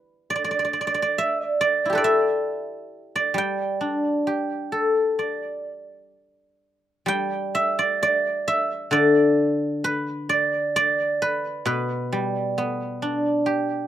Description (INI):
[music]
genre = chinese traditional, Chinese solo plucked strings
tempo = 63-69 BPM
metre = 4/4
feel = rubato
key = G gong mode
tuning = A4 = 440 Hz
[part]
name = guzheng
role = solo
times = 0.0-13.9 s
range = B2 to G5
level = -21 LUFS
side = equal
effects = slapback echo
[sound]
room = little or no reverb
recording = recorded outdoors, with no room sound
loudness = -21 LUFS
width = side -11 dB against mid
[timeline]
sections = 0.0-7.1 A section; 7.1-13.9 B section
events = none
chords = none